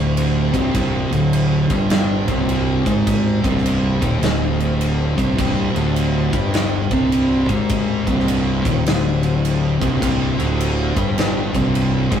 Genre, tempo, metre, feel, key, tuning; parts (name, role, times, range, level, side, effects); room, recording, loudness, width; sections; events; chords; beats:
stoner and doom metal; 104 BPM; 4/4; swing 64% on 8ths; C minor; A4 = 440 Hz
tonewheel organ; sustained chords; 0.0-12.2 s; C4 to C5; -30 LUFS; left 2 dB; overdrive, slow rotary speaker
thick fuzz guitar; riff; 0.0-12.2 s; C2 to Ab3; -22 LUFS; left 4 dB; distortion
thick fuzz guitar; riff; 0.0-12.2 s; C2 to Ab3; -21 LUFS; right 4 dB; distortion
fuzz fingered electric bass; bass; 0.0-12.2 s; C1 to Ab1; -22 LUFS; equal; overdrive
big rock drum kit; drums; 0.2-12.2 s; crash cymbal, kick drum, snare drum; -23 LUFS; equal
light reverb; rough rehearsal-room recording; -16 LUFS; side -8 dB against mid
0.0-12.2 A section
0.0 Cm
0.17 | 0.75 1.33 1.91 2.49 | 3.07 3.65 4.23 4.81 | 5.39 5.97 6.55 7.13 | 7.70 8.28 8.86 9.44 | 10.02 10.59 11.17 11.75